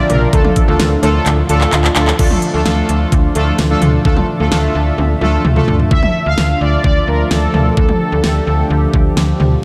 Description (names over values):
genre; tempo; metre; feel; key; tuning
synth-pop; 129 BPM; 4/4; straight; D minor; A4 = 440 Hz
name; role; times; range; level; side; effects
analog synth brass; melody; 0.0-1.0, 5.9-9.4 s; A4 to F5; -22 LUFS; equal; chorus, analog delay
chorused pulse-width pad; sustained chords; 0.0-9.6 s; A2 to E5; -22 LUFS; equal; none
slap-like FM bass; bass; 0.0-9.6 s; Bb1 to D2; -18 LUFS; equal; none
analog synth brass; accompaniment; 0.1-5.8 s; A3 to Bb4; -21 LUFS; equal; chorus
pop drum kit; drums; 0.1-9.5 s; cowbell, crash cymbal, handclaps, hi-hat, kick drum, snare drum, toms; -18 LUFS; equal; none
room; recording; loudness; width
wet cathedral reverb, RT60 4.8 s; dreamy mix soaked in reverb; -13 LUFS; mono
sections
0.0-2.2 A section; 2.2-5.9 B section; 5.9-9.6 C section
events
drum fill 1.3-2.2, 5.0-5.9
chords
0.3 Dm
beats
| 0.33 0.80 1.26 1.73 | 2.19 2.65 3.12 3.59 | 4.05 4.52 4.98 5.45 | 5.91 6.38 6.84 7.31 | 7.77 8.24 8.70 9.17 | 9.63